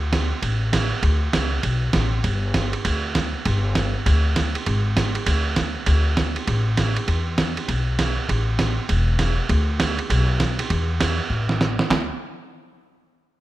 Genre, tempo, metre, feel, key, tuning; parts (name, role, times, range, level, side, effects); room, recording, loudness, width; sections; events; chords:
country, western swing; 199 BPM; 4/4; swing 62% on 8ths; A4 = 441 Hz
upright bass; bass; 0.0-12.1 s; E1 to E2; -21 LUFS; left 1 dB
lo-fi sampler-style drum kit; drums; 0.1-12.0 s; handclaps, hi-hat, kick drum, ride cymbal, snare drum; -23 LUFS; right 3 dB; overdrive
light reverb; -19 LUFS; side -15 dB against mid
0.0-11.9 A section; 11.9-13.1 B section
drum fill 11.3-11.9